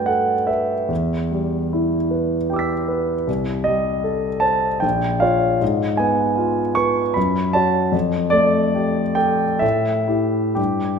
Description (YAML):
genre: classical, impressionist solo piano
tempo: 60-79 BPM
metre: 3/4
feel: rubato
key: unclear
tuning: A4 = 439 Hz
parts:
  - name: warm concert grand piano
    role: solo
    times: 0.0-11.0 s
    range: Bb1 to B6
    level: -17 LUFS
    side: equal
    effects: none
room: wet scoring stage reverb, RT60 1.6 s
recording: minimal, uncompressed stereo recording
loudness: -17 LUFS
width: side -6 dB against mid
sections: 0.0-11.0 A section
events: none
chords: 0.0 Gmaj9; 0.9 Em7; 3.3 Cm6; 4.8 Bbm6; 5.6 Abm6; 7.2 F#m; 7.9 F69; 9.6 A5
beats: 0.08 | 0.90 1.73 2.50 | 3.28 4.06 4.83 | 5.61 6.38 7.16 | 7.94 8.76 9.63 | 10.58